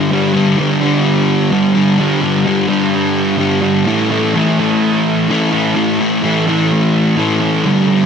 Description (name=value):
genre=rock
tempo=127 BPM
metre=4/4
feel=straight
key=unclear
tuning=A4 = 439 Hz
part: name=fuzz guitar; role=solo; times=0.0-8.1 s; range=G2 to A3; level=-12 LUFS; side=equal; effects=distortion, analog chorus, ping-pong delay
room=wet plate reverb, RT60 3.4 s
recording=dreamy mix soaked in reverb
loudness=-12 LUFS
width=side -7 dB against mid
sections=0.1-8.1 A section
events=none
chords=0.1 G5; 3.9 A5